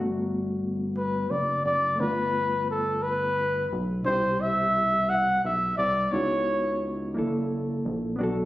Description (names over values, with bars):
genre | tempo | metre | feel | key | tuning
slow six-eight R&B | 58 BPM (dotted quarters) | 6/8 | straight | unclear | A4 = 439 Hz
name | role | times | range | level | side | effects
reed electric piano | accompaniment | 0.0-8.5 s | B2 to A4 | -31 LUFS | equal | harmonic tremolo
rubbery square bass | bass | 0.0-8.5 s | F#1 to C#2 | -31 LUFS | equal | none
breathy flugelhorn | melody | 1.0-6.9 s | A4 to F#5 | -24 LUFS | equal | tape echo
room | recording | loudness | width
light reverb, studio ambience | recorded on a phone in the room, studio reverb | -24 LUFS | side -16 dB against mid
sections
0.0-8.5 A section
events
none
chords
0.0 Gmaj9; 2.0 G7; 4.0 Cmaj9; 6.1 C#m11; 7.1 F#7alt